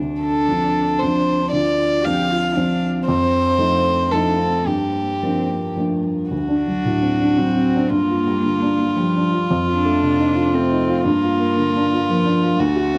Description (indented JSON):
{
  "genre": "neoclassical piano and strings",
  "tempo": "115 BPM",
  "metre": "3/4",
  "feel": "rubato",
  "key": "G minor",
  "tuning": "A4 = 441 Hz",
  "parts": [
    { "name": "dark cello", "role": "second line", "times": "0.0-13.0 s", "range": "F3 to G4", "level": "-25 LUFS", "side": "equal", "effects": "plate reverb" },
    { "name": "warm baby grand piano", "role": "accompaniment", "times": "0.0-13.0 s", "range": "D2 to F#4", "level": "-22 LUFS", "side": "equal", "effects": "plate reverb" },
    { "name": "warm violin", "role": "melody", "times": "0.2-13.0 s", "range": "F4 to F5", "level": "-24 LUFS", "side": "equal", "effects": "plate reverb" }
  ],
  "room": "wet small room reverb, RT60 0.5 s",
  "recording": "none",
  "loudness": "-19 LUFS",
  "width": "mono",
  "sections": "0.0-6.3 A section; 6.3-13.0 B section",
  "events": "none",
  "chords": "0.0 Dm7; 3.1 F7; 4.7 Gm7; 6.3 D7; 7.9 Gm7; 9.5 F7; 11.0 Gm7",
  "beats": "0.49 1.01 | 1.53 2.05 2.56 | 3.07 3.59 4.12 | 4.67 5.22 5.77 | 6.32 6.85 7.37 | 7.90 8.43 8.95 | 9.48 10.00 10.52 | 11.04 11.56 12.07 | 12.59"
}